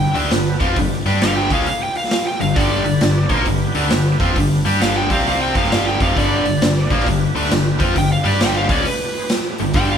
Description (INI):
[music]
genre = blues rock power trio and southern rock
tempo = 134 BPM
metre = 4/4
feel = swing 64% on 8ths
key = G mixolydian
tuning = A4 = 439 Hz
[part]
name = overdriven slide guitar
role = melody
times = 0.0-10.0 s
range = B4 to G5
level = -23 LUFS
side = right 1 dB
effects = none
[part]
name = overdriven tonewheel organ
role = sustained chords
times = 0.0-10.0 s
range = G3 to C5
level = -30 LUFS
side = right 3 dB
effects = slow rotary speaker, chorus vibrato
[part]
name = overdriven electric guitar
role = riff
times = 0.0-10.0 s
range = F2 to G4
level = -18 LUFS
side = left 1 dB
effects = none
[part]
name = hollow-body short-scale fingered electric bass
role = bass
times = 0.0-10.0 s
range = F1 to G2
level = -23 LUFS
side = right 1 dB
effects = none
[part]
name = raw garage drum kit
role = drums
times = 0.2-9.9 s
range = hi-hat, kick drum, snare drum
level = -20 LUFS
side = equal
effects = none
[sound]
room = moderate large studio reverb, RT60 1.2 s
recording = band playing live in one room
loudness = -15 LUFS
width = side -8 dB against mid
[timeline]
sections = 0.0-10.0 A section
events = electric slide guitar solo 0.0-10.0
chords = 0.0 G; 5.0 C5; 5.5 G